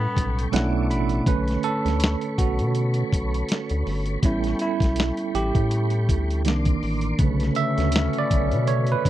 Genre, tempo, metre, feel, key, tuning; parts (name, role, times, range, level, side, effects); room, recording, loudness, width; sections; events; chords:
R&B, neo-soul; 81 BPM; 4/4; swing 57% on 16ths; B minor; A4 = 441 Hz
warm tenor saxophone; melody; 0.0-0.5 s; B3; -29 LUFS; left 3 dB; slapback echo
bell-like tine electric piano; accompaniment; 0.0-9.1 s; A2 to B5; -24 LUFS; right 4 dB; medium stereo tremolo
tonewheel organ; sustained chords; 0.0-9.1 s; A4 to D6; -34 LUFS; left 2 dB; slow rotary speaker, chorus vibrato
rubbery square bass; bass; 0.0-9.1 s; G1 to B2; -24 LUFS; left 1 dB
dusty soul sampler-style drum kit; drums; 0.2-9.1 s; hi-hat, kick drum, snare drum; -24 LUFS; left 1 dB
clear trombone section; stabs; 7.2-9.1 s; F#3 to C#4; -30 LUFS; left 17 dB
little or no reverb; dry, close 1970s-style studio recording; -20 LUFS; side -13 dB against mid
0.0-1.3 A section; 1.3-9.1 B section
tine electric piano fill 0.2-1.3; tine electric piano solo 1.3-9.1
0.0 A9; 0.5 Bm11; 1.3 Bm9; 4.2 A9; 6.5 Cm9; 7.2 Bm9